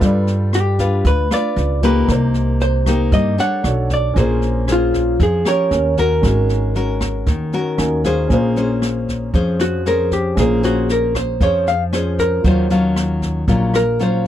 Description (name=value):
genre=bossa nova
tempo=116 BPM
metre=4/4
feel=straight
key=Bb minor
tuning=A4 = 440 Hz
part: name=nylon-string guitar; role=accompaniment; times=0.0-14.3 s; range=Bb2 to Db5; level=-20 LUFS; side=left 3 dB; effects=none
part: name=warm concert grand piano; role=accompaniment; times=0.0-14.3 s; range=Db4 to Ab5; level=-27 LUFS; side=right 4 dB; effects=none
part: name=upright bass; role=bass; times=0.0-14.3 s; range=Ab1 to G2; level=-19 LUFS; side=right 1 dB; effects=none
part: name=jazz brush drum kit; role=drums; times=0.0-14.1 s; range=kick drum, rim click, snare drum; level=-22 LUFS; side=right 1 dB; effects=none
part: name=vintage hollow-body jazz guitar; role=melody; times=0.6-14.3 s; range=F4 to Gb5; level=-19 LUFS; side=equal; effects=none
room=little or no reverb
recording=dry, close 1970s-style studio recording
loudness=-14 LUFS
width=side -11 dB against mid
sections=0.0-8.3 A section; 8.3-14.3 B section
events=grand piano fill 7.5-8.3; hollow-body jazz guitar solo 8.3-14.3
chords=0.0 G7; 2.1 Cm7; 3.6 Bm9; 4.2 Bbm9; 5.7 Eb7; 6.2 Ab9sus4; 8.3 Bbm9; 12.4 Ebm9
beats=| 0.01 0.53 1.05 1.57 | 2.09 2.60 3.12 3.64 | 4.16 4.68 5.20 5.71 | 6.23 6.75 7.27 7.79 | 8.30 8.82 9.34 9.86 | 10.38 10.89 11.41 11.93 | 12.45 12.96 13.48 14.00